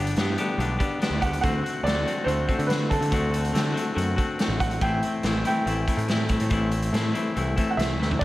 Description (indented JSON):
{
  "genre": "indie rock",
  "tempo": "142 BPM",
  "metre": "4/4",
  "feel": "straight",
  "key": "unclear",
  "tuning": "A4 = 438 Hz",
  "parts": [
    { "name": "clear upright piano", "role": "melody", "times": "0.0-8.2 s", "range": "G4 to G5", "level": "-30 LUFS", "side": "right 2 dB", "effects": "none" },
    { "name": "crunchy overdriven guitar", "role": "riff", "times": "0.0-8.2 s", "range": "G2 to G4", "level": "-27 LUFS", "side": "left 3 dB", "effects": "none" },
    { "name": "growling picked electric bass", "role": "bass", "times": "0.0-8.2 s", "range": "G1 to D3", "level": "-27 LUFS", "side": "equal", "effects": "overdrive" },
    { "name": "raw garage drum kit", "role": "drums", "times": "0.1-8.2 s", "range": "crash cymbal, hi-hat, kick drum, snare drum, toms", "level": "-27 LUFS", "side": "equal", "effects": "none" },
    { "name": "electric guitar through a small old amp", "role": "riff", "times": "8.2 s", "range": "D3", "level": "-36 LUFS", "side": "right 14 dB", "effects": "analog chorus" }
  ],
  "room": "light reverb, small room ambience",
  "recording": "none",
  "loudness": "-22 LUFS",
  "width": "side -16 dB against mid",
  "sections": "0.0-8.2 A section",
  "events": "drum fill 8.0",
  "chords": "0.0 G; 1.4 D7; 4.8 Am7",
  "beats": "0.16 0.59 1.01 | 1.43 1.85 2.28 2.70 | 3.12 3.55 3.97 4.40 | 4.82 5.24 5.67 6.09 | 6.51 6.94 7.36 7.78 | 8.21"
}